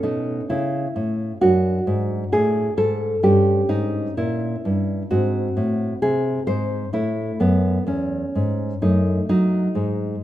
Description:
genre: classical, baroque-style dance for nylon-string guitar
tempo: 65 BPM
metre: 4/4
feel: rubato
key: unclear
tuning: A4 = 441 Hz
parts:
  - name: nylon-string guitar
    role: solo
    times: 0.0-10.2 s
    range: E2 to B#4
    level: -19 LUFS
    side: equal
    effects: none
room: moderate recital hall reverb, RT60 1.9 s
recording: minimal, uncompressed stereo recording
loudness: -19 LUFS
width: side -13 dB against mid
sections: 0.0-10.2 A section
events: none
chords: 0.0 A; 1.4 D/F#; 3.2 Gdim7; 5.1 G#; 6.9 A; 8.8 D#dim/F#

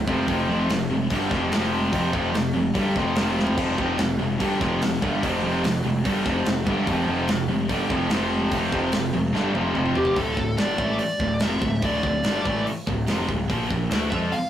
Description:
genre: heavy metal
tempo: 146 BPM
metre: 4/4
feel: straight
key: unclear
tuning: A4 = 439 Hz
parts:
  - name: cranked stack guitar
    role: riff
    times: 0.0-10.2 s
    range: F2 to G3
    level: -26 LUFS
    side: equal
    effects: overdrive
  - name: scooped high-gain guitar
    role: riff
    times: 0.0-14.3 s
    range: D2 to F4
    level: -28 LUFS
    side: left 2 dB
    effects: distortion
  - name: scooped high-gain guitar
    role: riff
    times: 0.0-14.3 s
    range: D2 to F4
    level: -30 LUFS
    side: right 4 dB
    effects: distortion
  - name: fuzz picked electric bass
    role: bass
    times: 0.0-14.3 s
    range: D1 to F2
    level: -28 LUFS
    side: equal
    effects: overdrive
  - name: tight metal drum kit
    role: drums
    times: 0.1-14.4 s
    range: crash cymbal, hi-hat, kick drum, snare drum, toms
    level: -27 LUFS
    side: equal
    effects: none
  - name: high-gain lead guitar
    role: melody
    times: 10.0-14.5 s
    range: G4 to F5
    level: -26 LUFS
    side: equal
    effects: distortion
room: moderate small room reverb, RT60 0.5 s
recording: rough rehearsal-room recording, warm saturation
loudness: -21 LUFS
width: side -10 dB against mid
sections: 0.0-10.2 A section; 10.2-14.5 B section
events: drum fill 3.4, 9.3-10.2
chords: 0.3 F5; 10.2 Dm; 13.5 Bb5

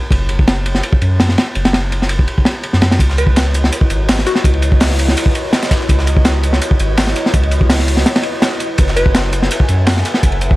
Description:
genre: drum and bass, jungle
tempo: 166 BPM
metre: 4/4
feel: straight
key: C# minor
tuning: A4 = 440 Hz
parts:
  - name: soft dub sub bass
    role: bass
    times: 0.1-10.6 s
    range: F#1 to F#2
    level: -15 LUFS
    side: equal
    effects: tube saturation
  - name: crunchy breakbeat drum kit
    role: drums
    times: 0.1-10.6 s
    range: hi-hat, kick drum, ride cymbal, snare drum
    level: -13 LUFS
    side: equal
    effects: none
  - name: ethereal airy pad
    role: sustained chords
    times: 3.5-10.6 s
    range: E4 to G#5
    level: -22 LUFS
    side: equal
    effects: ensemble chorus, built-in reverb
  - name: dusty soul sampler-style drum kit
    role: drums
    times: 3.0-10.5 s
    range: hi-hat, snare drum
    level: -24 LUFS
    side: equal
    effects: overdrive, high-pass filter on hats, high-pass filter on snare
  - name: glassy wavetable pluck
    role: melody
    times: 3.2-4.8, 9.0-9.2 s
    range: F#4 to B4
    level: -22 LUFS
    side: left 1 dB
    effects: chorus, dub echo
room: small room ambience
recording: vinyl crackle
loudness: -11 LUFS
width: side -18 dB against mid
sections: 0.0-10.6 A section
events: none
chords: 0.0 N.C.; 3.0 C#m11; 8.8 F#m11

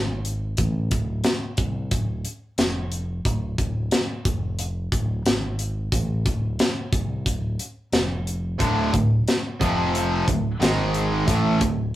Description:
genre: hard rock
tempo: 90 BPM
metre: 4/4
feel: straight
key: unclear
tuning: A4 = 440 Hz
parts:
  - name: overdriven fingered electric bass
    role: bass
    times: 0.0-11.9 s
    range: D1 to C2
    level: -27 LUFS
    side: equal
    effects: none
  - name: tight metal drum kit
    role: drums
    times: 0.2-11.8 s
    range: hi-hat, kick drum, snare drum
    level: -24 LUFS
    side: equal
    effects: none
  - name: cranked stack guitar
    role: riff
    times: 8.6-11.9 s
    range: D2 to A3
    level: -25 LUFS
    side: right 4 dB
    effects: overdrive
  - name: distorted electric guitar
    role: riff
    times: 8.6-11.9 s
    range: D2 to A3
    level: -26 LUFS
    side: left 5 dB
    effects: overdrive
  - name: tight distorted guitar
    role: riff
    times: 8.6-11.9 s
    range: D2 to A3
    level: -26 LUFS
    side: right 1 dB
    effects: distortion
room: moderate studio reverb, RT60 0.5 s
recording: rough rehearsal-room recording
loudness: -21 LUFS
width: side -14 dB against mid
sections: 0.0-12.0 A section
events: none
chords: 0.0 N.C.; 0.6 D5; 2.6 N.C.; 5.9 D5; 7.9 N.C.; 8.6 D5; 9.6 F5; 10.3 D5; 10.6 G#5; 11.3 D5

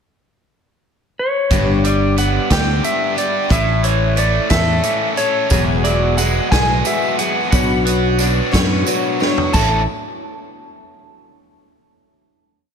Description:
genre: folk rock and heartland rock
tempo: 60 BPM (dotted quarters)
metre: 6/8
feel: straight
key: A major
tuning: A4 = 440 Hz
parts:
  - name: clean lap steel guitar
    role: melody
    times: 1.2-9.8 s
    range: C#5 to A5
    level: -20 LUFS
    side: equal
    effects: none
  - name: picked twelve-string acoustic guitar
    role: accompaniment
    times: 1.5-9.8 s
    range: E2 to C#5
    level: -22 LUFS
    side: left 5 dB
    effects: none
  - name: biting overdriven guitar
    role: riff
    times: 1.5-9.8 s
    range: E2 to C#5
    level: -21 LUFS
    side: right 1 dB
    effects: none
  - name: fingered electric bass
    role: bass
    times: 1.5-9.9 s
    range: E1 to F#2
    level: -18 LUFS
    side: equal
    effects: none
  - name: vintage drum kit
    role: drums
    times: 1.5-9.7 s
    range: crash cymbal, hi-hat, kick drum, snare drum, toms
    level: -21 LUFS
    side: right 1 dB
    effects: none
  - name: dark upright piano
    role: accompaniment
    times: 5.5-9.9 s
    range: D4 to E5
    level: -28 LUFS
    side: right 8 dB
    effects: none
  - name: tambourine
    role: percussion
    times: 5.5-9.8 s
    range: none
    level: -32 LUFS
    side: right 13 dB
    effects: none
room: moderate plate reverb, RT60 3.2 s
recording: dreamy mix soaked in reverb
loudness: -14 LUFS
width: side -7 dB against mid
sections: 0.0-1.5 pickup bar; 1.5-9.5 pre-chorus; 9.5-11.6 final chord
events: drum fill 9.2-9.5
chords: 0.0 N.C.; 1.5 G; 3.5 A; 5.5 Eadd9; 7.5 Bmadd9; 9.5 A

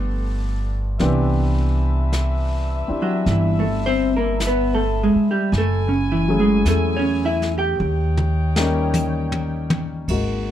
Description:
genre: jazz ballad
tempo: 53 BPM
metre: 4/4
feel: swing 66% on 8ths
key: unclear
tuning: A4 = 442 Hz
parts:
  - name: vintage hollow-body jazz guitar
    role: melody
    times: 0.0-9.3 s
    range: C#3 to G5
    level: -20 LUFS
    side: right 1 dB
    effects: none
  - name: warm grand piano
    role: accompaniment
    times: 0.0-10.5 s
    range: E3 to G#4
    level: -25 LUFS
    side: left 2 dB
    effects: none
  - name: mellow saxophone section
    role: sustained chords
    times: 0.0-10.1 s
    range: B3 to G#5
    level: -30 LUFS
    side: left 2 dB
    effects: none
  - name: upright bass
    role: bass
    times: 0.0-10.5 s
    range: F#1 to E2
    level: -21 LUFS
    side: equal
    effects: none
  - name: jazz brush drum kit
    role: drums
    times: 1.0-10.5 s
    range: brushed snare drum, hi-hat, kick drum, ride cymbal, snare drum, toms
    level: -26 LUFS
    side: left 1 dB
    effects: none
room: light reverb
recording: dark, warm production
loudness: -18 LUFS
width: side -11 dB against mid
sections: 0.0-10.1 A section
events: hollow-body jazz guitar solo 0.0-10.1; drum fill 7.8-10.1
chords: 0.0 G9; 1.0 Cmaj9; 5.5 F#m9; 7.8 D#7

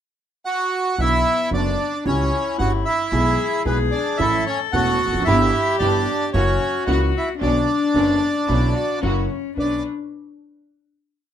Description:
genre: tango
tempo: 112 BPM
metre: 4/4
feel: rubato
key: B minor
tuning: A4 = 440 Hz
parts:
  - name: bandoneon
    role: melody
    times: 0.5-9.8 s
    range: B3 to F#5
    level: -21 LUFS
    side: right 2 dB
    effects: none
  - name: warm cello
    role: second line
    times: 1.0-9.8 s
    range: B3 to A4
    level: -24 LUFS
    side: left 5 dB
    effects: none
  - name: warm upright piano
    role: accompaniment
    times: 1.0-9.8 s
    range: E1 to B4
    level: -24 LUFS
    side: right 2 dB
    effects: none
  - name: upright bass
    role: bass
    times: 1.0-9.8 s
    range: E1 to C#2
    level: -23 LUFS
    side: equal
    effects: none
  - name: warm studio string section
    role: stabs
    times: 5.3-9.8 s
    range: A#3 to B4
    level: -30 LUFS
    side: equal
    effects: none
room: light reverb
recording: minimal, uncompressed stereo recording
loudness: -18 LUFS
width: side -9 dB against mid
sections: 0.0-1.0 pickup bar; 1.0-9.6 A section; 9.6-11.3 final chord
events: none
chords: 0.0 N.C.; 1.0 Bm; 2.1 C#dim; 3.1 E/B; 4.2 A; 5.3 Em/G; 6.3 F#7; 7.4 Bmadd9; 9.0 F#7; 9.6 Bmadd9

